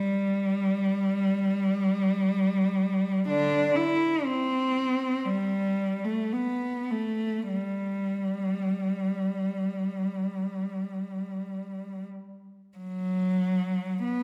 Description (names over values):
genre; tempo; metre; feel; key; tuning
classical, free, expressive piece for unaccompanied cello; free time; none; none; G major; A4 = 440 Hz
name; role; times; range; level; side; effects
warm cello; solo; 0.0-14.2 s; D3 to E4; -28 LUFS; equal; none
room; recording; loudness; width
wet recital hall reverb, RT60 1.6 s; none; -28 LUFS; mono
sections
0.0-12.8 A section; 12.8-14.2 B section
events
none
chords
none